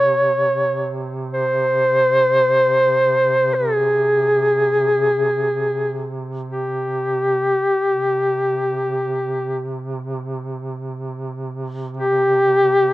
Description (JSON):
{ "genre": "caucasian folk, Caucasian lament", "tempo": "free time", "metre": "none", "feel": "none", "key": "unclear", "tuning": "A4 = 441 Hz", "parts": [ { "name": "warm duduk", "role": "melody", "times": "0.0-12.9 s", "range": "G4 to Db5", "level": "-16 LUFS", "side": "equal", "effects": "none" }, { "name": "mellow duduk", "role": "drone", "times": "0.0-12.9 s", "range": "C3", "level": "-27 LUFS", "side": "right 2 dB", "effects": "none" } ], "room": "light reverb", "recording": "close, detailed microphones", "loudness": "-16 LUFS", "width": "side -17 dB against mid", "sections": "0.0-12.9 A section", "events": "none", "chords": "none", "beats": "free time" }